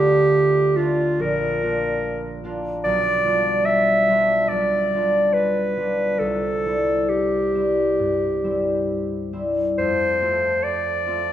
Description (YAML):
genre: classical, romantic duo for clarinet and harp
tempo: 66-74 BPM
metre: 4/4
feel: rubato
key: unclear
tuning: A4 = 440 Hz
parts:
  - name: clear clarinet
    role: melody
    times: 0.0-11.3 s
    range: F4 to E5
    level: -20 LUFS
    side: right 1 dB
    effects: none
  - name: concert harp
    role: accompaniment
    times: 0.0-11.3 s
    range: Bb1 to F4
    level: -22 LUFS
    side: left 1 dB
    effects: none
room: wet recital hall reverb, RT60 1.6 s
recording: heard from further back in the room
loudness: -18 LUFS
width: side -11 dB against mid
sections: 0.0-11.3 A section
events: none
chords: 0.0 Dm; 1.2 Bb; 2.8 G7/B; 6.2 C; 9.8 F